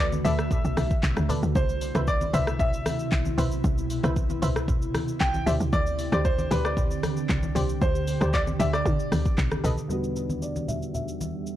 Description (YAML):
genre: amapiano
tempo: 115 BPM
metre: 4/4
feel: straight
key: E minor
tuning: A4 = 440 Hz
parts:
  - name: clear grand piano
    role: melody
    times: 0.0-11.4 s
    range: B4 to G5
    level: -30 LUFS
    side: equal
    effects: low-pass filter, tape echo
  - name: ethereal airy pad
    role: sustained chords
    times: 0.0-11.6 s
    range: E2 to G4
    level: -32 LUFS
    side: right 1 dB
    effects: ensemble chorus, built-in reverb, sidechain pumping, low-pass filter
  - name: tight log drum bass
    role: bass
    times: 0.0-9.8 s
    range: B1 to D3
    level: -27 LUFS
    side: equal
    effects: none
  - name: afro-pop drum kit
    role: drums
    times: 0.1-11.6 s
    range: handclaps, hi-hat, kick drum, rim click, shaker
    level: -28 LUFS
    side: equal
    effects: none
  - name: congas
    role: percussion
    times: 0.1-11.3 s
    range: none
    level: -33 LUFS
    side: equal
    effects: none
  - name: analog pluck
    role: stabs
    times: 0.2-9.8 s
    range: G4 to E5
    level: -35 LUFS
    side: equal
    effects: chorus, tape echo
  - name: soft electric-piano-like synth keys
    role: accompaniment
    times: 9.9-11.6 s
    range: E2 to F#4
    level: -32 LUFS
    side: equal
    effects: chorus, low-pass filter
room: digital ambience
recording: dry, gritty hardware recording, transformer saturation, cassette tape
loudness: -23 LUFS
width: side -12 dB against mid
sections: 0.0-9.9 A section; 9.9-11.6 B section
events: drop 0.0-9.9; filter sweep 9.9-11.6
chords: 0.0 Bm7; 1.6 Cmaj7; 5.5 D7sus4; 9.4 B7; 9.9 Em7